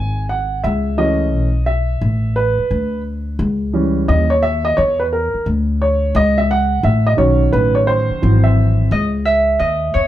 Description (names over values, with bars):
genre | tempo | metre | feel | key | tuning
hip hop, jazz-hop | 87 BPM | 4/4 | swing 64% on 16ths | C# minor | A4 = 440 Hz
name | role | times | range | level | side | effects
dark upright piano | accompaniment | 0.0-8.9 s | D#3 to G#5 | -17 LUFS | right 1 dB | none
upright bass | bass | 0.0-10.1 s | G#1 to E2 | -17 LUFS | left 1 dB | none
Celtic harp | melody | 8.9-10.1 s | C#5 to E5 | -15 LUFS | right 2 dB | none
room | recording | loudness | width
light reverb | band playing live in one room | -14 LUFS | side -13 dB against mid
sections
0.0-8.9 A section; 8.9-10.1 B section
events
upright piano solo 0.0-8.9; break 8.9-10.1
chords
0.0 N.C.; 0.6 B7sus4; 3.4 D#7b9/C#; 6.2 G#7sus4 (rootless); 8.2 G#aug7; 8.9 C#madd9